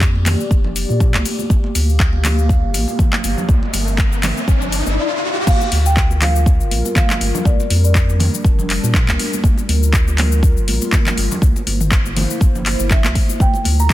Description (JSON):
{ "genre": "afro house", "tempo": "121 BPM", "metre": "4/4", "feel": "swing 55% on 16ths", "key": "G dorian", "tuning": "A4 = 440 Hz", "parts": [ { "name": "dark analog pad", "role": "sustained chords", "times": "0.0-13.9 s", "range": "G3 to F5", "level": "-26 LUFS", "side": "left 2 dB", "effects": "chorus, sidechain pumping" }, { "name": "warm sub bass", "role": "bass", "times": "0.0-13.9 s", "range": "F1 to Bb2", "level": "-17 LUFS", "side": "equal", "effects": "sidechain pumping" }, { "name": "afro-pop drum kit", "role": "drums", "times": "0.0-13.9 s", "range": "crash cymbal, handclaps, hi-hat, shaker, toms", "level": "-21 LUFS", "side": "left 2 dB", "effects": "small room ambience" }, { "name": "electronic kick drum", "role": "drums", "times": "0.0-13.9 s", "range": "none", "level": "-15 LUFS", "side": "equal", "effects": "small room ambience" }, { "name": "congas", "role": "percussion", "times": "0.2-13.8 s", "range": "none", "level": "-25 LUFS", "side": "right 4 dB", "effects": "none" }, { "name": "riser", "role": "sound effects", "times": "2.8-5.5 s", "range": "none", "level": "-24 LUFS", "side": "left 1 dB", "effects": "none" }, { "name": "marimba with soft mallets", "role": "melody", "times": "5.0-9.2, 12.9-13.9 s", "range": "D5 to Bb5", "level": "-24 LUFS", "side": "equal", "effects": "ping-pong delay" } ], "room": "little or no reverb", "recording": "dense, heavily limited modern master", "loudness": "-13 LUFS", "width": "side -15 dB against mid", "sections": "0.0-5.5 A section; 5.5-13.9 B section", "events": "riser 2.8-5.5; drop 5.5-13.9", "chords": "0.0 Gm7; 3.5 C7; 5.5 Gm7; 11.4 C7; 13.4 Gm7", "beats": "0.02 0.51 1.01 | 1.50 2.00 2.50 2.99 | 3.49 3.98 4.48 4.98 | 5.47 5.97 6.46 6.96 | 7.46 7.95 8.45 8.94 | 9.44 9.93 10.43 10.93 | 11.42 11.92 12.41 12.91 | 13.40 13.90" }